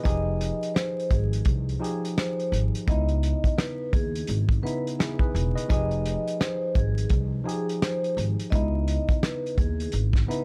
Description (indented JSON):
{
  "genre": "hip hop, boom-bap hip-hop",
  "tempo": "85 BPM",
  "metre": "4/4",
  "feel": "swing 60% on 16ths",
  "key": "F minor",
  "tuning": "A4 = 440 Hz",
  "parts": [
    { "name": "vibraphone with soft mallets", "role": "melody", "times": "0.0-10.4 s", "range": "Ab4 to Eb5", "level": "-34 LUFS", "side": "equal", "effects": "high-pass filter, low-pass filter" },
    { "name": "tine electric piano", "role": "accompaniment", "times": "0.0-10.4 s", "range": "Db3 to Eb5", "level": "-34 LUFS", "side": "equal", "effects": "cassette tape, high-pass filter, low-pass filter" },
    { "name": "upright bass", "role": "bass", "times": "0.1-10.2 s", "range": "Fb1 to Eb2", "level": "-29 LUFS", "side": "equal", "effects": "none" },
    { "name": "warm soul drum kit", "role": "drums", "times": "0.1-10.4 s", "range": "hi-hat, kick drum, rim click, snare drum", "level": "-28 LUFS", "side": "equal", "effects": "none" }
  ],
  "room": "little or no reverb",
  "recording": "dark, warm production, vinyl crackle",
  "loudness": "-26 LUFS",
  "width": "mono",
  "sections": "0.0-10.4 A section",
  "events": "none",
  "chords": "0.1 Fm9; 2.9 Dbm9; 5.7 Fm9; 8.5 Dbm9",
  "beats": "| 0.05 0.76 1.46 2.17 | 2.87 3.58 4.29 4.99 | 5.70 6.40 7.11 7.82 | 8.52 9.23 9.93"
}